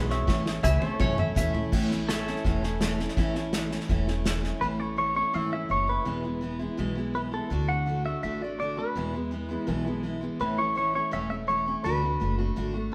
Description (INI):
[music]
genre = honky-tonk and classic country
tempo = 166 BPM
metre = 4/4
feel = straight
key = A major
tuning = A4 = 437 Hz
[part]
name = clean electric guitar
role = melody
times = 0.0-0.6, 4.6-12.4 s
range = A4 to F#5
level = -32 LUFS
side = equal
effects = spring reverb
[part]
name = picked steel-string acoustic guitar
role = accompaniment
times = 0.0-12.9 s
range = E2 to F#4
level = -33 LUFS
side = equal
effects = none
[part]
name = pedal steel guitar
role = sustained chords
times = 0.0-4.6 s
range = G#4 to E5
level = -40 LUFS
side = equal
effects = none
[part]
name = upright bass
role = bass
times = 0.0-12.9 s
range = E1 to F#2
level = -35 LUFS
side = equal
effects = none
[part]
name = unplugged drum kit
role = drums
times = 0.1-4.5 s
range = crash cymbal, hi-hat, kick drum, snare drum, toms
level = -31 LUFS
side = equal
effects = none
[part]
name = lap resonator guitar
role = second line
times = 0.6-1.6 s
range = C#5 to E5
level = -33 LUFS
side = equal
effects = none
[sound]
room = wet stone room reverb, RT60 1.2 s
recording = band playing live in one room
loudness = -28 LUFS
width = mono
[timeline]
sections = 0.0-1.7 A section; 1.7-4.6 B section; 4.6-12.9 C section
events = drum fill 0.3-1.7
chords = 0.3 A; 6.1 E; 7.5 D; 9.0 E; 10.4 A; 11.9 D